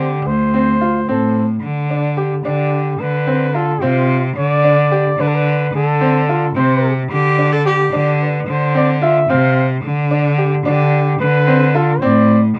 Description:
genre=contemporary instrumental, chamber music in an uneven meter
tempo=220 BPM (eighths)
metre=5/8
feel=straight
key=unclear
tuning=A4 = 440 Hz
part: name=warm flugelhorn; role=melody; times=0.0-12.4 s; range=F4 to F5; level=-21 LUFS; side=equal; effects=none
part: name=bright baby grand piano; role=arpeggios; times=0.0-12.3 s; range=C4 to G4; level=-21 LUFS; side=equal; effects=none
part: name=clear cello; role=bass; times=0.0-12.6 s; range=D2 to D3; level=-18 LUFS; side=equal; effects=none
part: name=bright viola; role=second line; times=7.1-8.0 s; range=G4 to A4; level=-19 LUFS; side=equal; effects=none
room=light reverb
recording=dark, warm production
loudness=-15 LUFS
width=mono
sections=0.0-1.6 A section; 1.6-12.6 B section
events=none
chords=0.3 Dm7; 1.6 G5/D; 3.0 F5/D; 4.4 G5/D; 5.7 F/D (rootless); 7.1 G5/D; 8.5 F5/D; 9.8 G5/D; 11.2 D7(no3)

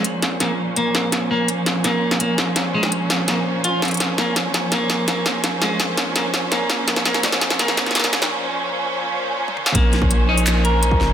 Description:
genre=half-time drum and bass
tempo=167 BPM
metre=4/4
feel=half-time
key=Bb minor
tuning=A4 = 444 Hz
part: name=rich symphonic string section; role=sustained chords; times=0.0-11.1 s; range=Bb2 to C5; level=-23 LUFS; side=right 1 dB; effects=sidechain pumping, low-pass filter
part: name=clean electric guitar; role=arpeggios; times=0.0-11.1 s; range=Ab3 to Bb4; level=-23 LUFS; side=equal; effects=digital delay
part: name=industrial drum kit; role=drums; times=0.0-11.1 s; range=handclaps, hi-hat, snare drum, toms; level=-20 LUFS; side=equal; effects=none
part: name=long sustained 808-style bass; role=bass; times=9.7-11.1 s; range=F1 to Bb1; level=-19 LUFS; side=equal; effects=tube saturation
part: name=electronic kick drum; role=drums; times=9.7-11.0 s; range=none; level=-19 LUFS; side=equal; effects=none
room=moderate echo chamber reverb, RT60 1.6 s, digital ambience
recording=dense, heavily limited modern master, high-pass filter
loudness=-17 LUFS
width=side -9 dB against mid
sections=0.0-9.8 A section; 9.8-11.1 B section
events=build-up 0.0-9.8; drum fill 0.0-8.3, 9.5; filter sweep on string section 0.0-9.8; break 8.3-9.8; drop 9.8-11.1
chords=0.0 Bbmadd9

